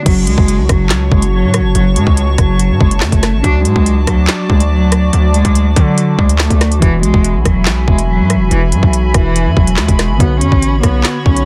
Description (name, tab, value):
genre	hip hop, drill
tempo	142 BPM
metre	4/4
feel	half-time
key	F# minor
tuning	A4 = 441 Hz
part	dark cello	melody	0.0-11.4 s	E3 to D4	-19 LUFS	equal	low-pass filter
part	muted felt-like synth keys	accompaniment	0.0-11.4 s	C#3 to C#5	-23 LUFS	equal	chorus, low-pass filter
part	hollow soft pad	sustained chords	0.1-11.4 s	F#4 to D6	-25 LUFS	equal	chorus
part	distorted 808-style bass	bass	0.1-11.4 s	E1 to D3	-16 LUFS	equal	distortion
part	drill drum kit	drums	0.1-11.4 s	crash cymbal, handclaps, hi-hat, kick drum, rim click, snare drum	-15 LUFS	equal	soft clipping on snare
room	little or no reverb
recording	dense, heavily limited modern master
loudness	-12 LUFS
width	mono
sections	0.1-11.4 A section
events	none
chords	0.1 F#m; 3.4 D; 6.8 Eadd9; 10.2 Bmadd9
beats	| 0.06 0.48 0.91 1.33 | 1.75 2.17 2.60 3.02 | 3.44 3.86 4.29 4.71 | 5.13 5.55 5.98 6.40 | 6.82 7.24 7.67 8.09 | 8.51 8.93 9.36 9.78 | 10.20 10.62 11.05